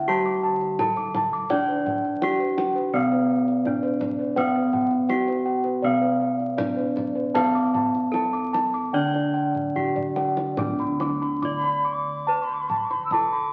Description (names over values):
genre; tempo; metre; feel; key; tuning
Javanese gamelan; 71-84 BPM; 4/4; straight; D slendro; A4 = 436 Hz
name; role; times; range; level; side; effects
gamelan-type bronze metallophone; melody; 0.0-13.5 s; C4-45c to D5; -30 LUFS; equal; none
gamelan-type bronze metallophone; accompaniment; 0.0-10.6 s; G3-35c to D4; -28 LUFS; equal; none
gamelan-type bossed gongs; arpeggios; 0.0-13.5 s; C5-45c to D6; -28 LUFS; equal; none
gamelan-type bossed gongs; bass; 0.0-13.5 s; D2 to D5; -37 LUFS; equal; none
kendang; percussion; 0.3-13.3 s; none; -37 LUFS; equal; none
bright reedy bansuri; second line; 11.6-13.5 s; B5+49c to E6+23c; -30 LUFS; equal; none
room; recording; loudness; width
wet large studio reverb, RT60 1.4 s; very old 78 rpm record, vinyl crackle; -24 LUFS; mono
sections
0.0-10.6 A section; 10.6-13.5 B section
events
drum fill 9.5-10.6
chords
none